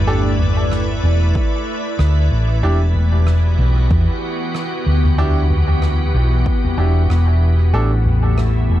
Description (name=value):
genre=ambient dub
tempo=94 BPM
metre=4/4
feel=swing 57% on 16ths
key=E minor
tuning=A4 = 440 Hz
part: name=soft additive organ-like pad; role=sustained chords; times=0.0-8.8 s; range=E3 to D5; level=-23 LUFS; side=equal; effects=ensemble chorus, built-in reverb, vintage 12-bit sampler grit
part: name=hollow-body short-scale fingered electric bass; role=bass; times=0.0-8.8 s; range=E1 to E2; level=-14 LUFS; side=equal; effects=none
part: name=bright upright piano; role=stabs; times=0.1-7.9 s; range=D4 to A4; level=-26 LUFS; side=right 2 dB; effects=dub echo
part: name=soft-mallet drum kit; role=drums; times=0.4-8.5 s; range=rim click, toms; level=-23 LUFS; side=left 1 dB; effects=none
part: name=electronic kick drum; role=drums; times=1.4-6.6 s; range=none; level=-19 LUFS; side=equal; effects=none
room=studio reverb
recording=dark, warm production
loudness=-14 LUFS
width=side -13 dB against mid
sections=0.0-8.8 A section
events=none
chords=0.0 A7sus4; 2.6 Em7; 7.7 A7sus4